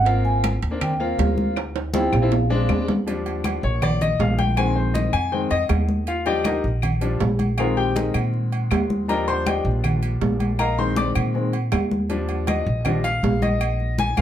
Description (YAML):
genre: Afro-Cuban jazz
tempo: 159 BPM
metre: 4/4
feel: straight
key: Eb major from 3.1 s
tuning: A4 = 440 Hz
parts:
  - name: vibraphone with soft mallets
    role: melody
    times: 0.0-2.7 s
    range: F5 to Ab5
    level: -25 LUFS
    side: right 2 dB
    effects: plate reverb
  - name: upright bass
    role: bass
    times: 0.0-14.2 s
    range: Ab1 to Bb2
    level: -23 LUFS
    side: right 1 dB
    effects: none
  - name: clear baby grand piano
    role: accompaniment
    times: 0.1-14.2 s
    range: Eb3 to D6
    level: -24 LUFS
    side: left 4 dB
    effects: none
  - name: congas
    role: percussion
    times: 0.1-14.2 s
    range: none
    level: -27 LUFS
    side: left 1 dB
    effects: none
  - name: timbales and agogo bells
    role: percussion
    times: 0.1-14.2 s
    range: none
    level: -29 LUFS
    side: right 6 dB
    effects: none
  - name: claves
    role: percussion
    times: 0.4-14.2 s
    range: none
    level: -34 LUFS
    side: left 9 dB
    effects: none
room: moderate club reverb, RT60 0.7 s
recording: none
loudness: -19 LUFS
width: side -10 dB against mid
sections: 0.0-3.1 A section; 3.1-14.2 A section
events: vibraphone solo 0.0-3.1; drum fill 1.6-3.1; grand piano solo 3.1-14.2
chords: 0.1 Ab6; 1.6 Dm7; 2.3 Bb7; 3.1 Ebmaj7; 4.6 Bb7sus4; 6.1 Ebmaj7; 7.6 Bb7sus4; 9.1 Ebmaj7; 10.6 Bb7sus4; 12.1 Ebmaj7; 13.6 Bb7sus4